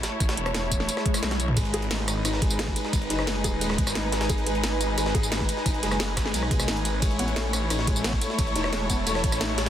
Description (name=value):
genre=dark technical drum and bass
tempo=176 BPM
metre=4/4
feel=straight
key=G# phrygian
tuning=A4 = 442 Hz
part: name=muted studio string section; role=sustained chords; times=0.0-9.7 s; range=G#3 to C#5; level=-32 LUFS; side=left 2 dB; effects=sidechain pumping
part: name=drum and bass drum kit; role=drums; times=0.0-9.6 s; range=hi-hat, ride cymbal, rim click, snare drum, tambourine, toms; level=-29 LUFS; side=equal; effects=soft clipping on snare
part: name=jungle sampler-style drum kit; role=drums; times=0.0-9.7 s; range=hi-hat, snare drum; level=-36 LUFS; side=right 1 dB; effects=none
part: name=warbly tape-like pad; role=texture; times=0.0-9.7 s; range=D#4 to A5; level=-33 LUFS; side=right 2 dB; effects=chorus, built-in reverb, phaser, sidechain pumping
part: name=snarling distorted saw bass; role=bass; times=0.2-9.7 s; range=D#1 to B1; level=-29 LUFS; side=equal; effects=distortion, overdrive, sidechain pumping
part: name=electronic kick drum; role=drums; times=0.2-9.3 s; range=none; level=-27 LUFS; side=equal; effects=overdrive
part: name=swell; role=sound effects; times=1.0-1.6 s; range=none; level=-34 LUFS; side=left 3 dB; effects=none
part: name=felt-muted upright piano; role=arpeggios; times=1.6-9.7 s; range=G#3 to G#4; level=-32 LUFS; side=left 2 dB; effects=sidechain pumping, tape echo
room=light reverb, digital ambience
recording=dense, heavily limited modern master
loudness=-23 LUFS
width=side -10 dB against mid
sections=0.0-9.7 A section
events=swell 1.0-1.6; drum fill 1.2-1.6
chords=0.0 A; 1.6 G#m; 7.0 A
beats=| 0.20 0.55 0.89 1.23 | 1.57 1.91 2.25 2.59 | 2.93 3.27 3.61 3.95 | 4.29 4.64 4.98 5.32 | 5.66 6.00 6.34 6.68 | 7.02 7.36 7.70 8.04 | 8.39 8.73 9.07 9.41